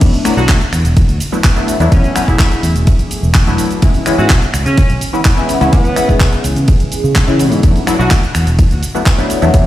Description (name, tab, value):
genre	filtered disco house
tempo	126 BPM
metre	4/4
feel	straight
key	E mixolydian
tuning	A4 = 438 Hz
part	funky polysynth comp	accompaniment	0.0-9.7 s	E3 to G#4	-16 LUFS	left 2 dB	chorus, phaser, vintage 12-bit sampler grit, sidechain pumping
part	fingered electric bass	bass	0.0-9.6 s	E1 to C#3	-15 LUFS	equal	sidechain pumping
part	electronic kick drum	drums	0.0-9.6 s	none	-11 LUFS	equal	none
part	house drum kit	drums	0.0-9.6 s	crash cymbal, finger snaps, handclaps, hi-hat, ride cymbal, shaker	-20 LUFS	right 1 dB	sidechain pumping on hats, sidechain pumping on perc, sidechain pumping on cymbals
part	clear horn section	melody	0.4-8.1 s	B3 to F#4	-21 LUFS	equal	vintage 12-bit sampler grit, sidechain pumping, tape echo
room	light reverb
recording	played on a big sound system in a bare room, stone room reverb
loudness	-10 LUFS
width	side -14 dB against mid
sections	0.0-9.7 A section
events	none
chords	0.0 E9sus4; 3.8 C#m7; 7.6 E9sus4